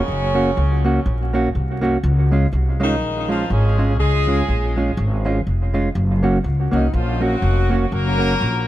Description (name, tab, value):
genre	ska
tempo	123 BPM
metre	4/4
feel	swing 58% on 8ths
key	unclear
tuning	A4 = 440 Hz
part	mellow horn section	melody	0.0-8.7 s	Db3 to Bb4	-23 LUFS	left 1 dB	tape echo
part	upright bass	bass	0.1-8.7 s	F1 to Db2	-18 LUFS	equal	none
part	hollow-body jazz guitar	accompaniment	0.3-8.4 s	Ab3 to Gb4	-22 LUFS	right 2 dB	tape echo
room	light reverb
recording	vinyl crackle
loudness	-16 LUFS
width	side -14 dB against mid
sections	0.0-8.7 A section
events	none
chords	0.0 Gb; 2.0 Db; 5.9 Gb